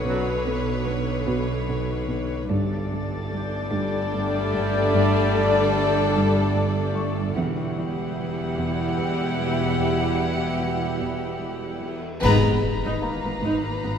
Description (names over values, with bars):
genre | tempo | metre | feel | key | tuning
cinematic, suspense film score | 74 BPM | 3/4 | straight | unclear | A4 = 440 Hz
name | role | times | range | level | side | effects
warm chamber violin section | melody | 0.0-14.0 s | C#5 to A#5 | -30 LUFS | left 4 dB | none
warm chamber violin section | second line | 0.0-14.0 s | G4 to B4 | -30 LUFS | left 1 dB | none
warm chamber viola section | accompaniment | 0.0-13.9 s | D3 to E4 | -32 LUFS | right 1 dB | none
warm chamber cello section | riff | 0.0-14.0 s | E2 to B3 | -29 LUFS | equal | none
dark chamber double bass section | bass | 0.0-13.9 s | E1 to B1 | -31 LUFS | right 4 dB | none
rich studio cello section | bass | 0.0-13.9 s | E2 to B2 | -30 LUFS | right 1 dB | none
bowed-like drone | drone | 0.0-14.0 s | G1 to E2 | -34 LUFS | left 1 dB | built-in reverb
felt-muted upright piano | texture | 0.0-2.5, 7.0-14.0 s | A#3 to C#6 | -38 LUFS | left 2 dB | none
warm chamber violin section | texture | 0.0-6.9, 12.2-14.0 s | A#5 to B#6 | -39 LUFS | left 4 dB | none
bright trombone section | sustained chords | 0.1-12.6 s | B2 to B3 | -33 LUFS | right 2 dB | none
mellow French horn section | sustained chords | 0.1-12.6 s | A3 to B4 | -30 LUFS | left 4 dB | none
cymbal swell, clash cymbals and concert bass drum | percussion | 9.8-13.8 s | none | -34 LUFS | equal | none
timpani | percussion | 12.2-13.4 s | G#2 | -30 LUFS | equal | none
impact | sound effects | 12.2-14.0 s | none | -34 LUFS | equal | none
room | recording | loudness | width
wet scoring stage reverb, RT60 2.0 s | minimal, uncompressed stereo recording | -21 LUFS | side -7 dB against mid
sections
0.0-12.2 A section; 12.2-14.0 B section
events
band accent 12.2-13.0; impact 12.2-14.0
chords
0.0 Bmadd9; 2.5 Gsus2; 7.4 Emadd9; 12.2 G#madd9